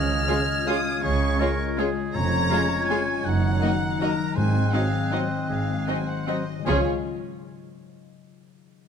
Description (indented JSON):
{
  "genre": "classical, orchestral ballroom waltz",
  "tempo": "160 BPM",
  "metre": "3/4",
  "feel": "uneven beats, rubato",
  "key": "Db major",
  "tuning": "A4 = 440 Hz",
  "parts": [
    { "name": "rich chamber violin section", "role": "melody", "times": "0.0-6.9 s", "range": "Db5 to F6", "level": "-31 LUFS", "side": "left 2 dB", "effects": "none" },
    { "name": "hollow concert flute", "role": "second line", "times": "0.0-6.9 s", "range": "Ab5 to Ab6", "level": "-32 LUFS", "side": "equal", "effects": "none" },
    { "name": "warm clarinet", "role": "second line", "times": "0.0-6.8 s", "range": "C4 to F4", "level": "-33 LUFS", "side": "left 1 dB", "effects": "none" },
    { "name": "warm oboe", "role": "second line", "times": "0.0-6.8 s", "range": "Ab4 to F5", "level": "-34 LUFS", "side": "right 3 dB", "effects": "none" },
    { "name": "concert harp", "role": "arpeggios", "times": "0.0-6.9 s", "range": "F2 to F5", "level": "-31 LUFS", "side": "left 11 dB", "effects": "none" },
    { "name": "rich chamber cello section", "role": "bass", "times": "0.0-6.9 s", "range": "F2 to Db3", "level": "-30 LUFS", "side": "right 3 dB", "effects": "none" },
    { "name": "warm chamber double bass section", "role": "bass", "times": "0.0-6.9 s", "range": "F1 to Db2", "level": "-28 LUFS", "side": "right 3 dB", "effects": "none" },
    { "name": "rich chamber violin section", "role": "second line", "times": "0.3-6.9 s", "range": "Gb4 to Eb5", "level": "-34 LUFS", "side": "left 1 dB", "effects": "none" },
    { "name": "rich chamber viola section", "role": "accompaniment", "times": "0.3-6.9 s", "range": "Ab3 to F4", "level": "-32 LUFS", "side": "right 2 dB", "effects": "none" },
    { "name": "mellow French horn section", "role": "sustained chords", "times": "0.3-6.8 s", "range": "F3 to Eb4", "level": "-34 LUFS", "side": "left 2 dB", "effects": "none" },
    { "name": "timpani", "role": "percussion", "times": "4.4-6.8 s", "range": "Ab2 to Db3", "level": "-30 LUFS", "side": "left 1 dB", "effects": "none" }
  ],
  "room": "moderate scoring stage reverb, RT60 2.0 s",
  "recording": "close, detailed microphones",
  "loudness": "-21 LUFS",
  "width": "side -7 dB against mid",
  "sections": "0.0-6.7 A section; 6.7-7.8 B section",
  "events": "none",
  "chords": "0.0 Db; 2.1 Db/F; 3.3 Ebm/Gb; 4.4 Ab7; 6.7 Db",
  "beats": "0.29 0.67 | 1.03 1.40 1.78 | 2.15 2.51 2.89 | 3.25 3.62 4.00 | 4.37 4.74 5.13 | 5.50 5.88 6.28 | 6.66"
}